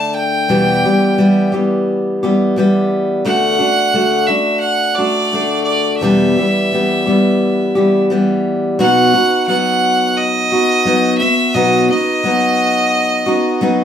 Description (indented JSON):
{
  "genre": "acoustic folk duo or small band",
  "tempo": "87 BPM",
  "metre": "4/4",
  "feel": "straight",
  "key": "E minor",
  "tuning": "A4 = 440 Hz",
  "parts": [
    { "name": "bright fiddle", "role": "melody", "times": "0.0-13.8 s", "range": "D5 to A5", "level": "-16 LUFS", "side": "right 1 dB", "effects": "none" },
    { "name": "picked steel-string acoustic guitar", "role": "accompaniment", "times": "0.0-13.8 s", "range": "E2 to G4", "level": "-14 LUFS", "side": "left 1 dB", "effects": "none" }
  ],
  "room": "wet studio ambience, RT60 0.4 s",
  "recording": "heard from further back in the room",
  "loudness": "-12 LUFS",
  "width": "side -9 dB against mid",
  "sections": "0.0-8.8 A section; 8.8-13.8 B section",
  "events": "none",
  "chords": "0.5 Em; 3.3 D; 6.0 Em; 8.8 B",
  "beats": "| 0.48 1.17 1.87 2.56 | 3.25 3.95 4.64 5.33 | 6.03 6.72 7.41 8.10 | 8.79 9.48 10.17 10.86 | 11.54 12.23 12.92 13.60"
}